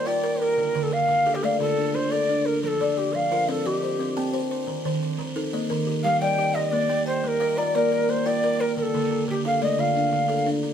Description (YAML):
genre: southern african traditional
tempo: 117 BPM (dotted quarters)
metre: 12/8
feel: straight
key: unclear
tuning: A4 = 438 Hz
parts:
  - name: breathy mellow Native American-style cedar flute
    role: melody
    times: 0.0-10.5 s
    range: G4 to G5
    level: -23 LUFS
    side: equal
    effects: plate reverb
  - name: buzzing kalimba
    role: arpeggios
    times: 0.0-10.7 s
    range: D3 to Bb5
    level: -26 LUFS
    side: left 4 dB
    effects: none
  - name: buzzing kalimba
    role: arpeggios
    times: 0.0-10.7 s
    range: D3 to A5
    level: -29 LUFS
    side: right 5 dB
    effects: none
room: moderate studio reverb, RT60 0.6 s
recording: none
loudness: -21 LUFS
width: side -8 dB against mid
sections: 0.0-10.7 A section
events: none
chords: 0.0 Bb; 0.6 Dm; 2.6 F; 3.7 Cm; 4.7 Eb5; 5.7 Gm; 6.7 Bb; 8.8 Dm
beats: 0.07 | 0.58 1.09 1.61 2.12 | 2.63 3.14 3.66 4.17 | 4.68 5.19 5.70 6.21 | 6.73 7.24 7.75 8.26 | 8.77 9.28 9.78 10.29